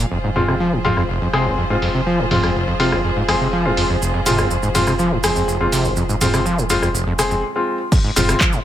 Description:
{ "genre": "acid house", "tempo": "123 BPM", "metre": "4/4", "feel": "straight", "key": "F minor", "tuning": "A4 = 440 Hz", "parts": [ { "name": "clear studio string section", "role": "sustained chords", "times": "0.0-7.4 s", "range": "F3 to C5", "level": "-25 LUFS", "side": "equal", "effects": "sidechain pumping" }, { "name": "overdriven acid bass", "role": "riff", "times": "0.0-8.6 s", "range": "F1 to F3", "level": "-20 LUFS", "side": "equal", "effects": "distortion, tube saturation, sidechain pumping, digital delay" }, { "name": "round analog bass", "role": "bass", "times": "0.0-8.3 s", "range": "F1", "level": "-27 LUFS", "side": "equal", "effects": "sidechain pumping" }, { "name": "bright baby grand piano", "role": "stabs", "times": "0.4-8.4 s", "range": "Ab3 to Ab4", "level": "-20 LUFS", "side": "left 2 dB", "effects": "digital delay" }, { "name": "punchy analog drum machine", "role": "drums", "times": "0.4-8.5 s", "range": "crash cymbal, handclaps, hi-hat, rim click, toms", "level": "-22 LUFS", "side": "right 1 dB", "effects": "low-pass filter on hats, low-pass filter on toms, low-pass filter on snare, low-pass filter on cymbals" }, { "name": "maracas", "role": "percussion", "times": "4.0-8.6 s", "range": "none", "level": "-28 LUFS", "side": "right 6 dB", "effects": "none" }, { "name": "electronic kick drum", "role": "drums", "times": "7.9-8.5 s", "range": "none", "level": "-16 LUFS", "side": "equal", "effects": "none" } ], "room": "light reverb", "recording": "none", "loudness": "-16 LUFS", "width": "side -11 dB against mid", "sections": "0.1-7.9 A section", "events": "filter sweep on drum 0.1-7.9; break 7.4-7.9", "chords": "0.1 Fm" }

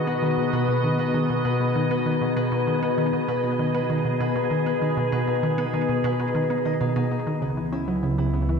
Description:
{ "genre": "ambient, sequencer-driven space music", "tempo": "98 BPM", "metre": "4/4", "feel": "straight", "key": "unclear", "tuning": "A4 = 440 Hz", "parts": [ { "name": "evolving wavetable pad", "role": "sustained chords", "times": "0.0-8.6 s", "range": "B2 to E5", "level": "-26 LUFS", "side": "left 2 dB", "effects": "chorus, built-in reverb" }, { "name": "concert harp", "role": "arpeggios", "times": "0.0-8.6 s", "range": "B3 to D#5", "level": "-27 LUFS", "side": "moving between left 6 dB and right 1 dB", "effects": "auto-pan, tape echo" }, { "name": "wind-like tuned noise texture", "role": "texture", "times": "0.0-7.4 s", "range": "G#4", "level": "-38 LUFS", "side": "right 6 dB", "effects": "built-in reverb" }, { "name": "resonant blip pluck", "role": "riff", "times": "0.1-8.5 s", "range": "B2 to C#4", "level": "-25 LUFS", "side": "right 1 dB", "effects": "chorus, tape echo" }, { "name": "warm sub bass", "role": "bass", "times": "7.4-8.6 s", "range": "C#2", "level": "-29 LUFS", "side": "right 1 dB", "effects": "none" } ], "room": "wet concert hall reverb, RT60 2.0 s", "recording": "dark, warm production", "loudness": "-21 LUFS", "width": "side -6 dB against mid", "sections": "0.0-7.4 A section; 7.4-8.6 B section", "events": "none", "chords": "0.0 B; 7.4 C#m7" }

